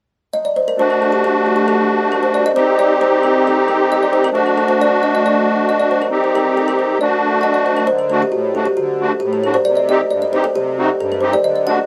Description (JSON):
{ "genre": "klezmer", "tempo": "135 BPM", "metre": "2/4", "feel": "straight", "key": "D phrygian dominant", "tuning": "A4 = 440 Hz", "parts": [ { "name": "kalimba", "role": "melody", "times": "0.3-11.9 s", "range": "F#4 to F#5", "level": "-18 LUFS", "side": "equal", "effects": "tape echo" }, { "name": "musette accordion", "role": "accompaniment", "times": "0.8-11.8 s", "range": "G2 to G4", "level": "-19 LUFS", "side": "equal", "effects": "none" } ], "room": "moderate small room ambience, RT60 0.5 s", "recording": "none", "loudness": "-16 LUFS", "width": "mono", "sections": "0.8-7.9 A section; 7.9-11.9 A section", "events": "none", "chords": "0.0 N.C.; 0.8 D; 2.5 Cm; 4.3 D; 6.1 Cm; 7.0 D; 9.7 Cm", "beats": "0.32 | 0.76 1.21 | 1.66 2.10 | 2.54 2.99 | 3.44 3.88 | 4.33 4.77 | 5.22 5.66 | 6.11 6.55 | 7.00 7.45 | 7.89 8.34 | 8.79 9.23 | 9.68 10.12 | 10.57 11.02 | 11.46" }